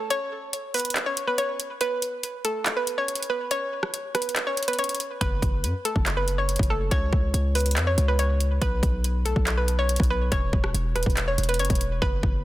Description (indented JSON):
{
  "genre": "hip hop, trap",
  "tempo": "141 BPM",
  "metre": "4/4",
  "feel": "half-time",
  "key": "unclear",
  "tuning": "A4 = 439 Hz",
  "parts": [
    { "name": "hollow square pluck", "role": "melody", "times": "0.0-12.4 s", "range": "A4 to C#5", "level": "-27 LUFS", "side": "equal", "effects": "chorus, digital delay" },
    { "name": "trap drum kit", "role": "drums", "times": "0.1-12.3 s", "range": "handclaps, hi-hat, kick drum, rim click", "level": "-26 LUFS", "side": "equal", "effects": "none" },
    { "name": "hard-hitting 808-style bass", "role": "bass", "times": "5.2-12.4 s", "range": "E1 to F#2", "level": "-24 LUFS", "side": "equal", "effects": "none" }
  ],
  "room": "little or no reverb",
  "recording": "dense, heavily limited modern master",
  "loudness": "-22 LUFS",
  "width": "side -15 dB against mid",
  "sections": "0.0-12.4 A section",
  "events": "break 0.0-5.2; hi-hats muted 12.0-12.4",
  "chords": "0.0 N.C.; 5.2 F#madd11; 6.9 N.C.; 8.6 Bsus2; 10.3 C#m7/E"
}